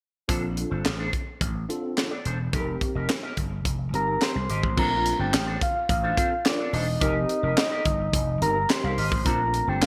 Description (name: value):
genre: early-eighties boogie funk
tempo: 107 BPM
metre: 4/4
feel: straight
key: Bb major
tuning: A4 = 438 Hz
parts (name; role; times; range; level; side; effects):
- tine electric piano; accompaniment; 0.3-9.8 s; A3 to Bb4; -34 LUFS; equal; ensemble chorus
- electric guitar with an envelope filter; riff; 0.3-9.9 s; D4 to F5; -37 LUFS; equal; analog chorus
- vintage slap bass; bass; 0.3-9.9 s; E1 to C2; -31 LUFS; equal; none
- tight funk drum kit; drums; 0.3-9.9 s; crash cymbal, handclaps, hi-hat, kick drum, snare drum; -29 LUFS; equal; gated reverb
- soft octave-layered synth lead; melody; 3.9-9.9 s; D5 to C6; -29 LUFS; equal; chorus
room: moderate lush hall reverb, RT60 1.7 s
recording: bright 1980s-style digital production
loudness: -25 LUFS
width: mono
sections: 0.3-4.8 A section; 4.8-9.9 B section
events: none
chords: 0.3 Bbmaj9; 2.5 F9sus4; 4.8 Bbmaj9; 7.0 F9sus4; 9.3 Bbmaj9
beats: | 0.29 0.85 1.41 1.97 | 2.53 3.09 3.65 4.21 | 4.77 5.33 5.89 6.46 | 7.02 7.58 8.14 8.70 | 9.26 9.82